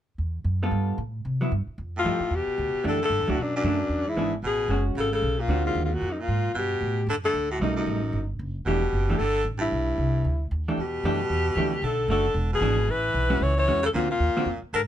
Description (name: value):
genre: jazz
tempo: 227 BPM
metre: 4/4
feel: swing 59% on 8ths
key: E minor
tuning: A4 = 440 Hz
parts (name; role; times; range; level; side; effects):
- upright bass; bass; 0.2-14.9 s; E1 to C3; -27 LUFS; right 1 dB; none
- vintage hollow-body jazz guitar; accompaniment; 0.6-14.5 s; D3 to A4; -28 LUFS; right 2 dB; none
- breathy alto saxophone; melody; 2.0-14.8 s; D4 to C#5; -26 LUFS; left 3 dB; none
- growling baritone saxophone; second line; 2.0-14.8 s; F#2 to E3; -31 LUFS; right 4 dB; none
room: little or no reverb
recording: close, detailed microphones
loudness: -23 LUFS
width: side -11 dB against mid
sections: 0.2-2.3 A section; 2.3-10.8 B section; 10.8-14.9 B section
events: none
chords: 0.2 Emadd9; 0.7 G9; 1.3 Cmaj7#11; 1.8 F9; 2.3 Em11; 3.4 Bm7; 3.9 E7; 4.4 Amaj13; 5.5 D7alt; 6.6 Gmaj9; 7.6 B7b13; 8.7 Em11; 11.8 Bm7; 12.4 E7; 12.9 Amaj13; 13.9 D7alt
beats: | 0.19 0.46 0.72 0.99 | 1.25 1.52 1.78 2.05 | 2.31 2.58 2.85 3.11 | 3.38 3.64 3.90 4.17 | 4.43 4.70 4.96 5.23 | 5.49 5.76 6.02 6.29 | 6.55 6.82 7.08 7.34 | 7.61 7.87 8.14 8.40 | 8.67 8.93 9.20 9.46 | 9.72 9.99 10.25 10.52 | 10.78 11.04 11.31 11.57 | 11.84 12.10 12.36 12.63 | 12.89 13.16 13.42 13.68 | 13.95 14.21 14.48 14.74